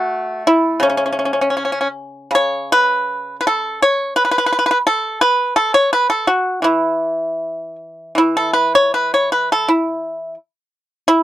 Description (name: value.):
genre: chinese traditional, Chinese solo plucked strings.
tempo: 76-88 BPM.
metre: 2/4.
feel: rubato.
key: E zhi mode.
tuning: A4 = 440 Hz.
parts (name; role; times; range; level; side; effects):
pipa; solo; 0.0-11.2 s; C#3 to C#5; -14 LUFS; equal; none.
room: little or no reverb.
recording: dry, close 1970s-style studio recording.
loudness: -14 LUFS.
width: side -13 dB against mid.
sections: 0.0-8.2 A section; 8.2-11.2 B section.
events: none.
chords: none.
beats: 0.10 | 0.82 1.56 | 2.32 3.09 | 3.81 4.50 | 5.20 5.91 | 6.63 7.40 | 8.17 8.94 | 9.67 10.38 | 11.06.